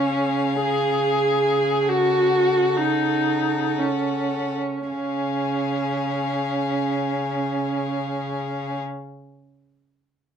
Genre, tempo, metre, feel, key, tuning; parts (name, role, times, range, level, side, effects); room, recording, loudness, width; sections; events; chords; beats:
classical, slow romantic movement for string quartet; 50-72 BPM; 3/4; rubato; Db major; A4 = 440 Hz
rich violin; melody; 0.0-8.8 s; F5 to Gb5; -32 LUFS; left 11 dB
rich violin; second line; 0.0-8.8 s; Ab4 to A4; -29 LUFS; left 6 dB
rich viola; accompaniment; 0.0-8.8 s; Db4 to Ab4; -22 LUFS; right 1 dB
rich cello; bass; 0.0-8.8 s; Db3; -30 LUFS; right 5 dB
light reverb; dark, warm production; -20 LUFS; side -8 dB against mid
0.0-4.9 A section; 4.9-8.0 B section
slowing down 0.0-4.9
0.0 Db; 1.9 Gbm/Db; 4.9 Db
0.14 1.04 | 1.88 2.76 3.76 | 4.90 5.96 7.00